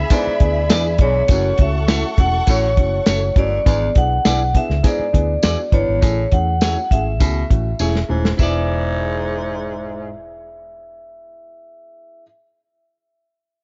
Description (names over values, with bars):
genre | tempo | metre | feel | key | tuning
uptempo 1960s-style soul | 101 BPM | 4/4 | straight | E mixolydian | A4 = 445 Hz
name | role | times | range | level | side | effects
vibraphone with medium hard mallets | melody | 0.0-12.2 s | C#5 to F#5 | -25 LUFS | equal | none
dark studio string section | second line | 0.0-3.6 s | G#4 to C#6 | -30 LUFS | equal | none
vintage muted fingered electric bass | bass | 0.0-12.2 s | D#1 to E2 | -23 LUFS | equal | none
dark upright piano | accompaniment | 0.1-12.2 s | A3 to B4 | -29 LUFS | equal | none
raspy baritone saxophone | riff | 0.1-10.1 s | E2 to B2 | -29 LUFS | equal | none
warm soul drum kit | drums | 0.1-8.5 s | hi-hat, kick drum, snare drum | -17 LUFS | equal | none
tambourine | percussion | 0.1-8.7 s | none | -33 LUFS | equal | none
clean electric guitar | stabs | 0.7-12.3 s | E4 to D5 | -30 LUFS | equal | none
room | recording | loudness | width
small room reverb | dark, warm production, nothing above 7.8 kHz | -17 LUFS | mono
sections
0.0-8.4 A section; 8.4-10.8 B section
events
drum fill 7.8-8.4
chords
0.0 E7; 1.3 F#m7; 3.7 E7/G#; 6.0 Amaj7; 8.4 E7